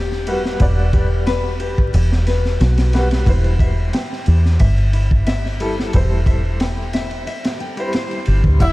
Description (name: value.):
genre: trip hop.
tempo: 90 BPM.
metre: 4/4.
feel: straight.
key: unclear.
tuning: A4 = 440 Hz.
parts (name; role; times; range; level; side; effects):
felt-muted upright piano; accompaniment; 0.0-8.7 s; G3 to F#5; -26 LUFS; equal; tremolo, tape echo.
nylon-string guitar; arpeggios; 0.0-8.7 s; D4 to G5; -28 LUFS; left 4 dB; analog delay.
deep dub fingered electric bass; bass; 0.0-8.7 s; E1 to E2; -16 LUFS; equal; none.
crunchy breakbeat drum kit; drums; 0.1-8.7 s; kick drum, ride cymbal, snare drum; -20 LUFS; equal; vintage 12-bit sampler grit.
trumpet with cup mute; melody; 8.6-8.7 s; E5; -20 LUFS; equal; none.
warm chamber string section; sustained chords; 8.6-8.7 s; E4; -24 LUFS; left 2 dB; none.
tambourine; percussion; 8.6-8.7 s; none; -39 LUFS; equal; none.
room: light reverb, studio reverb.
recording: vinyl crackle.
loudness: -15 LUFS.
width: side -19 dB against mid.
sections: 0.0-8.7 A section.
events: none.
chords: 0.0 Em9; 3.3 C/E.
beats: | 0.60 1.27 1.94 2.60 | 3.27 3.94 4.60 5.27 | 5.93 6.60 7.27 7.93 | 8.60.